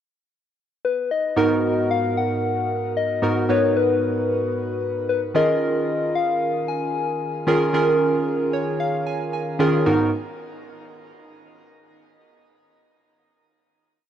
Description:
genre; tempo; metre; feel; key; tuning
R&B; 113 BPM; 4/4; swing 63% on 16ths; G# dorian; A4 = 440 Hz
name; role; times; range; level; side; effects
soft struck synth lead; melody; 0.8-9.3 s; B4 to G#5; -24 LUFS; left 6 dB; chorus, cassette tape, shimmer reverb
warm analog keys; accompaniment; 1.4-10.1 s; G#2 to G#5; -21 LUFS; right 2 dB; chorus, cassette tape, shimmer reverb
room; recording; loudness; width
wet studio reverb, RT60 0.6 s; home recording on cassette; -19 LUFS; side -9 dB against mid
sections
0.0-1.4 pickup bar; 1.4-9.9 verse; 9.9-12.0 final chord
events
synth keys fill 8.3-9.9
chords
0.0 N.C.; 1.4 G#m9; 5.3 D#9sus4; 9.9 G#m9

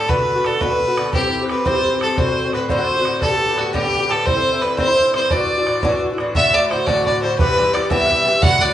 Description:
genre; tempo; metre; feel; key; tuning
celtic folk, Celtic jig; 115 BPM (dotted quarters); 6/8; straight; D mixolydian; A4 = 441 Hz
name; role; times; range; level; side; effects
clear fiddle; melody; 0.0-8.7 s; F#4 to F#5; -17 LUFS; equal; none
clear oboe; second line; 0.0-8.7 s; F#4 to F#5; -30 LUFS; left 4 dB; none
hammered dulcimer; second line; 0.0-8.7 s; F#4 to F#5; -28 LUFS; right 3 dB; none
Irish bouzouki; accompaniment; 0.0-8.7 s; G2 to G4; -21 LUFS; left 1 dB; none
bodhran; percussion; 0.1-8.7 s; none; -24 LUFS; right 1 dB; none
room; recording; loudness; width
wet large studio reverb, RT60 1.0 s; band playing live in one room, nothing above 10.7 kHz; -15 LUFS; side -11 dB against mid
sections
0.0-6.4 A section; 6.4-8.7 B section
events
none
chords
0.1 Bm; 1.1 C; 2.2 D7; 3.2 Gadd9; 4.3 Cadd9; 5.3 Dadd9; 6.4 D; 7.4 Em

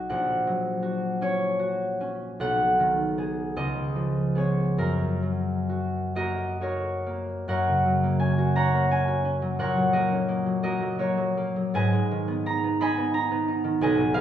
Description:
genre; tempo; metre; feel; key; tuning
classical, solo harp piece; 43-60 BPM (dotted quarters); 6/8; rubato; F# major; A4 = 441 Hz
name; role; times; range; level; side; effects
concert harp; solo; 0.0-14.2 s; A#1 to B5; -23 LUFS; equal; none
room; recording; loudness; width
wet recital hall reverb, RT60 1.4 s; heard from further back in the room; -23 LUFS; side -10 dB against mid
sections
0.0-7.5 A section; 7.5-14.2 B section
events
none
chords
0.1 F#/A#; 2.4 G#m7/B; 3.6 C#7; 4.8 F#; 9.6 F#/A#; 11.7 G#m

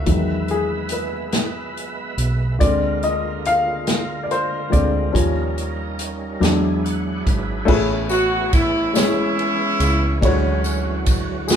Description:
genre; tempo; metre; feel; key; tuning
slow gospel; 47 BPM (dotted quarters); 6/8; straight; A major from 7.7 s; A4 = 440 Hz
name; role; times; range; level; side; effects
warm baby grand piano; accompaniment; 0.0-11.6 s; A2 to F5; -22 LUFS; left 2 dB; none
overdriven tonewheel organ; sustained chords; 0.0-11.6 s; D3 to F#5; -29 LUFS; right 4 dB; slow rotary speaker, chorus vibrato
fingered electric bass; bass; 0.0-11.6 s; G#1 to E2; -24 LUFS; right 1 dB; none
natural country drum kit; drums; 0.1-11.6 s; crash cymbal, hi-hat, kick drum, ride cymbal, snare drum; -21 LUFS; equal; none
warm horn section; melody; 8.1-11.6 s; E3 to F#4; -20 LUFS; equal; none
tambourine; percussion; 8.1-11.6 s; none; -31 LUFS; left 4 dB; none
room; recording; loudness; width
moderate large studio reverb, RT60 0.9 s; band playing live in one room; -17 LUFS; side -8 dB against mid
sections
0.0-7.7 A section; 7.7-11.6 B section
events
grand piano solo 0.0-7.7; tonewheel organ fill 6.4-7.7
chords
0.1 Emaj7; 2.6 Bb7/D; 5.1 Eb7; 6.4 E9; 7.7 Amaj9; 10.2 Dmaj9#11

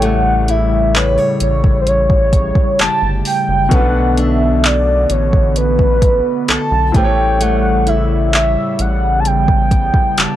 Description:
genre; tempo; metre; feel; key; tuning
contemporary R&B; 65 BPM; 4/4; straight; unclear; A4 = 440 Hz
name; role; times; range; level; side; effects
warm velvety synth lead; melody; 0.0-10.4 s; B4 to A5; -16 LUFS; equal; chorus
clear grand piano; accompaniment; 0.0-10.4 s; A2 to C#5; -23 LUFS; left 2 dB; none
hollow soft pad; sustained chords; 0.0-10.4 s; C#3 to B3; -22 LUFS; equal; chorus
fingerpicked steel-string acoustic guitar; arpeggios; 0.0-10.4 s; A3 to C#5; -24 LUFS; left 3 dB; none
rubbery square bass; bass; 0.0-10.3 s; F#1 to B1; -17 LUFS; equal; none
smooth R&B drum kit; drums; 0.0-10.4 s; handclaps, hi-hat, kick drum; -14 LUFS; equal; overdrive
room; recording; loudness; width
little or no reverb; dry, gritty hardware recording; -11 LUFS; side -12 dB against mid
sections
0.0-10.4 A section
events
none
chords
0.0 A7; 3.7 Bm7; 6.9 A7

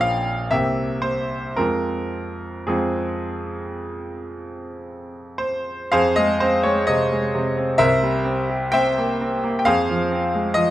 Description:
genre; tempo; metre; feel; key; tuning
classical, romantic character piece for solo piano; 52-68 BPM; 4/4; rubato; F minor; A4 = 441 Hz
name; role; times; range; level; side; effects
bright concert grand piano; solo; 0.0-10.7 s; Bb1 to G5; -19 LUFS; equal; none
room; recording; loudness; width
moderate recital hall reverb, RT60 1.3 s; none; -19 LUFS; side -13 dB against mid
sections
0.0-5.9 A section; 5.9-10.7 B section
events
none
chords
0.0 Bbm; 0.5 C7; 1.6 Fm; 7.8 C7; 9.6 Fm

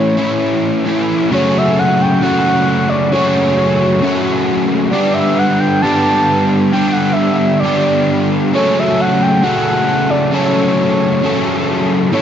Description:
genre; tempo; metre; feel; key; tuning
rock; 133 BPM; 4/4; straight; unclear; A4 = 440 Hz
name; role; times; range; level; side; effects
breathy flute-like synth lead; melody; 0.0-12.2 s; C#5 to A5; -17 LUFS; right 1 dB; chorus, tape echo
crunchy overdriven guitar; riff; 0.0-12.2 s; F#2 to A4; -13 LUFS; equal; analog chorus
room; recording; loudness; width
moderate lush hall reverb, RT60 1.8 s; dark, warm production, nothing above 7.7 kHz; -12 LUFS; side -9 dB against mid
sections
0.0-1.3 A section; 1.3-12.2 B section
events
none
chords
0.0 A; 1.3 F#m; 4.9 G; 8.5 F#m

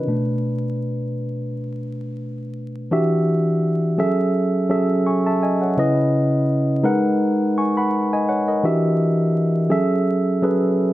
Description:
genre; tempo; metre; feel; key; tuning
R&B; 84 BPM; 4/4; swing 54% on 16ths; unclear; A4 = 439 Hz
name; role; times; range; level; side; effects
mellow tine electric piano; solo; 0.0-10.9 s; B2 to Db6; -18 LUFS; equal; none
room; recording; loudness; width
moderate echo chamber reverb, RT60 1.7 s; vinyl crackle; -17 LUFS; side -15 dB against mid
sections
0.0-2.9 A section; 2.9-10.9 B section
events
tine electric piano solo 0.0-2.9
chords
0.1 Bm7; 2.9 Em9; 4.0 Gbm9; 5.8 Dbm9; 6.9 Abm9; 8.6 Em9; 9.7 Gbm9

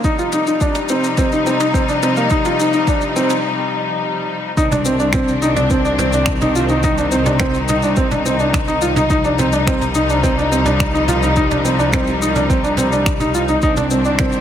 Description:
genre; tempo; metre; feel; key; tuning
piano and strings electronica; 106 BPM; 4/4; straight; C minor; A4 = 440 Hz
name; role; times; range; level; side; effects
rich symphonic string section; sustained chords; 0.0-14.4 s; C3 to Eb4; -20 LUFS; left 3 dB; sidechain pumping
warm upright piano; riff; 0.0-14.3 s; Bb3 to F4; -18 LUFS; right 1 dB; tape echo
electronic kick drum; drums; 0.0-14.3 s; none; -20 LUFS; equal; none
jazz brush drum kit; drums; 0.0-14.4 s; finger snaps, shaker, toms; -24 LUFS; equal; high-pass filter on toms, high-pass filter on snare, high-pass filter on perc, high-pass filter on room
rich symphonic double bass section; bass; 4.6-14.4 s; C2; -21 LUFS; equal; sidechain pumping
room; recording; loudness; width
moderate lush hall reverb, RT60 2.2 s; none; -14 LUFS; side -10 dB against mid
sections
0.0-4.6 A section; 4.6-14.4 B section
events
build-up 0.0-4.6; break 3.4-4.6; drop 4.6-14.4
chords
0.0 Ebadd9/C; 4.6 Cmadd9; 9.1 Ebadd9/C; 13.6 Cmadd9

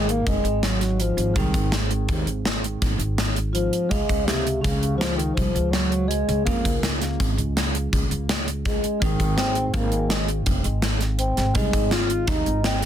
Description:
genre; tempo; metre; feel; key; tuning
progressive instrumental, band music in an uneven meter; 165 BPM; 7/4; straight; Db major; A4 = 440 Hz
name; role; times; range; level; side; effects
dark bass clarinet; melody; 0.0-12.8 s; C3 to F4; -26 LUFS; equal; ping-pong delay
vibraphone with soft mallets; second line; 0.0-12.8 s; C4 to F5; -30 LUFS; left 3 dB; none
bell-like tine electric piano; accompaniment; 0.0-12.9 s; Ab3 to F5; -33 LUFS; right 7 dB; none
upright bass; bass; 0.0-12.9 s; F1 to F2; -25 LUFS; equal; none
gated 80s drum kit; drums; 0.1-12.9 s; hi-hat, kick drum, snare drum; -24 LUFS; equal; none
room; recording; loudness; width
light reverb; dense, heavily limited modern master; -20 LUFS; side -10 dB against mid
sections
0.0-12.9 A section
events
none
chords
0.0 Ab; 3.9 Db; 9.0 Ab

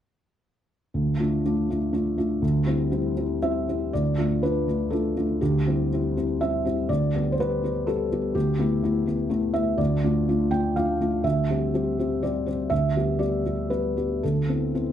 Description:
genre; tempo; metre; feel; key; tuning
neoclassical minimalist piano; 122 BPM; 3/4; rubato; D dorian; A4 = 440 Hz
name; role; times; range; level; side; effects
felt-muted upright piano; solo; 0.9-14.9 s; D2 to G5; -22 LUFS; equal; slapback echo
room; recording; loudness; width
little or no reverb; close, detailed microphones; -22 LUFS; side -10 dB against mid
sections
0.9-3.9 A section; 3.9-14.9 B section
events
none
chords
0.9 Dm; 2.4 C/D; 3.9 Dm; 5.4 C/D; 6.9 G/D; 8.4 Asus2/D; 9.8 Dm; 11.2 C/D; 12.7 G/D; 14.2 Amadd9/D

